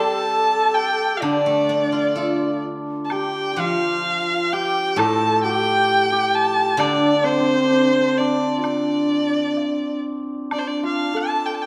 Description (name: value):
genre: chinese traditional, Chinese chamber ensemble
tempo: 64 BPM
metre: 2/4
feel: rubato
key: D yu mode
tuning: A4 = 438 Hz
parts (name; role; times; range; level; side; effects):
- rich erhu; melody; 0.0-11.7 s; C5 to A5; -24 LUFS; equal; none
- hammered dulcimer; second line; 0.0-11.7 s; C4 to A4; -26 LUFS; equal; none
- reedy low xiao; second line; 0.0-11.5 s; D4 to D5; -26 LUFS; equal; none
- steel-string zither; accompaniment; 0.0-9.6 s; A2 to A4; -28 LUFS; equal; none
- woodblock; percussion; 1.2-10.7 s; none; -33 LUFS; equal; none
room: wet recital hall reverb, RT60 1.5 s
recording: none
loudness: -20 LUFS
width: mono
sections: 0.0-10.5 A section; 10.5-11.7 B section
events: none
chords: none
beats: 0.30 | 1.22 2.16 | 3.10 4.06 | 4.98 5.88 | 6.78 7.70 | 8.63 9.56 | 10.51 11.45